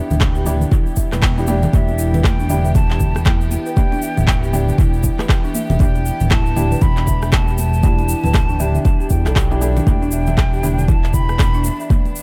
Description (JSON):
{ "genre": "afro house", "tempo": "118 BPM", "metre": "4/4", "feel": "swing 60% on 16ths", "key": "E minor", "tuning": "A4 = 438 Hz", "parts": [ { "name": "rich chamber string section", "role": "sustained chords", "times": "0.0-12.2 s", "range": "E3 to G4", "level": "-33 LUFS", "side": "equal", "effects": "sidechain pumping" }, { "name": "folk marimba with soft mallets", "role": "arpeggios", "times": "0.0-11.9 s", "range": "B3 to E5", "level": "-30 LUFS", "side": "equal", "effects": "sidechain pumping, dub echo" }, { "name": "felt-muted upright piano", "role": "stabs", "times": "0.0-11.9 s", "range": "D4 to G4", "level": "-30 LUFS", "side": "equal", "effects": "sidechain pumping, dub echo" }, { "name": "smooth synth bass", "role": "bass", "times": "0.1-11.7 s", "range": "D1 to E2", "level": "-21 LUFS", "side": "equal", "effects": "tube saturation, sidechain pumping" }, { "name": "congas", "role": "percussion", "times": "0.1-12.1 s", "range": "none", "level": "-28 LUFS", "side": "equal", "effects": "dub echo" }, { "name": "egg shaker", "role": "percussion", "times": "0.1-12.2 s", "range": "none", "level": "-35 LUFS", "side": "equal", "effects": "none" }, { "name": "afro-pop drum kit", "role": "drums", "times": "0.2-11.5 s", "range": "handclaps, rim click, toms", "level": "-26 LUFS", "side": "equal", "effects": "dub echo" }, { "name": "electronic kick drum", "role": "drums", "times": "0.2-12.0 s", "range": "none", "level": "-18 LUFS", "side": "equal", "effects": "none" }, { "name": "hollow concert flute", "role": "melody", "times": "1.7-11.9 s", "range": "E5 to B5", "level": "-30 LUFS", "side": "equal", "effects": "dub echo" } ], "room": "studio reverb", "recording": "echo-heavy mix", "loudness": "-16 LUFS", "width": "mono", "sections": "0.0-12.2 A section", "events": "none", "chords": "0.0 Em7" }